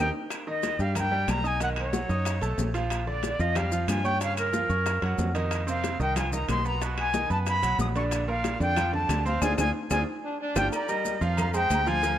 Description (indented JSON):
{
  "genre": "latin, salsa",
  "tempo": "184 BPM",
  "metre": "4/4",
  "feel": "straight",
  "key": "unclear",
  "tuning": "A4 = 438 Hz",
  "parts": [
    { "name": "bright reedy silver concert flute", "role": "melody", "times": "0.0-12.2 s", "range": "Bb4 to D#6", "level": "-29 LUFS", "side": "equal", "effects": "none" },
    { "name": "bright grand piano", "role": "accompaniment", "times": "0.0-12.2 s", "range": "Bb2 to D#6", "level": "-32 LUFS", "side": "right 3 dB", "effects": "none" },
    { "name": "fingered electric bass", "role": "bass", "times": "0.0-12.2 s", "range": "G1 to G2", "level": "-29 LUFS", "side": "equal", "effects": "none" },
    { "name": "bongos and cowbell", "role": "percussion", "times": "0.3-12.2 s", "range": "none", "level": "-38 LUFS", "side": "left 6 dB", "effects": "none" },
    { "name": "claves", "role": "percussion", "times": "0.3-11.9 s", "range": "none", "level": "-39 LUFS", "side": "left 6 dB", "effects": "none" },
    { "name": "congas", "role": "percussion", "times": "0.3-12.2 s", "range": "none", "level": "-36 LUFS", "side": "left 1 dB", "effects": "none" },
    { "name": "maracas", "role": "percussion", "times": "0.3-12.2 s", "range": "none", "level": "-41 LUFS", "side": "left 7 dB", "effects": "none" },
    { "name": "timbales and agogo bells", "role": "percussion", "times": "0.3-12.2 s", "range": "none", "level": "-37 LUFS", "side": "right 3 dB", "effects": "none" },
    { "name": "bright trombone section", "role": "second line", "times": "10.2-10.7 s", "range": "D4", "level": "-36 LUFS", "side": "equal", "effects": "none" }
  ],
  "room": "light reverb",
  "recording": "none",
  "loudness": "-24 LUFS",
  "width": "side -11 dB against mid",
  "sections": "0.3-10.7 A section; 10.7-12.2 B section",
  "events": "drum fill 0.0-0.3, 10.2-10.7; band accent 0.0-0.3, 9.4-10.7",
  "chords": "0.3 Bmaj7#5; 1.6 B9; 2.9 Bb6; 4.2 Gm7b5; 4.9 F#; 5.5 F5; 6.8 B6; 8.1 Bbmaj7; 9.4 Ddim; 10.1 G5; 10.7 F13sus4; 11.4 Fm"
}